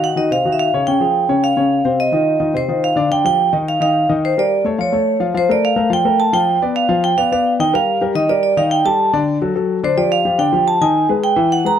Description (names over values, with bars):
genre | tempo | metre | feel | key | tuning
jazz | 214 BPM | 4/4 | straight | Bb major | A4 = 440 Hz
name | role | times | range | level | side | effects
vibraphone with medium hard mallets | melody | 0.0-11.8 s | C5 to Bb5 | -16 LUFS | right 3 dB | auto-pan, analog delay
warm concert grand piano | accompaniment | 0.0-11.8 s | C3 to F5 | -18 LUFS | left 4 dB | none
room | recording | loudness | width
moderate studio reverb, RT60 0.5 s | dark, warm production | -14 LUFS | side -9 dB against mid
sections
0.0-5.3 A section; 5.3-11.8 B section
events
none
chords
0.0 Ebm13; 0.9 Dbmaj7; 2.0 F5; 3.1 Ebmaj9/D; 3.7 N.C.; 4.2 Ebmaj7#11; 4.8 Faug; 5.3 Bb5; 6.5 G7/F; 7.6 Ebmaj9; 8.7 Ebmaj7#11; 9.3 D; 9.8 G5; 10.9 Emaj7/D#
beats
0.02 0.30 0.58 | 0.86 1.14 1.42 1.70 | 1.98 2.26 2.54 2.83 | 3.10 3.39 3.67 3.95 | 4.23 4.51 4.79 5.07 | 5.35 5.63 5.91 6.19 | 6.47 6.75 7.03 7.31 | 7.59 7.87 8.15 8.43 | 8.71 8.99 9.27 9.55 | 9.83 10.11 10.39 10.67 | 10.95 11.23 11.51 11.79